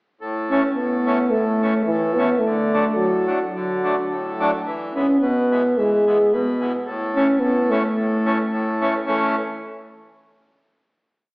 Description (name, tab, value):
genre	alpine folk, alpine dance band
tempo	108 BPM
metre	2/4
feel	straight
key	A major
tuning	A4 = 440 Hz
part	accordion	accompaniment	0.2-9.4 s	A2 to D4	-22 LUFS	equal	none
part	mellow euphonium	melody	0.5-9.4 s	E3 to C#4	-19 LUFS	equal	none
room	wet recital hall reverb, RT60 1.6 s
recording	recorded in a church or concert hall, AM radio sound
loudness	-18 LUFS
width	side -28 dB against mid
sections	0.2-9.1 A section; 9.1-10.2 final chord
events	none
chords	0.2 Aadd9; 2.4 D; 4.7 E; 6.9 A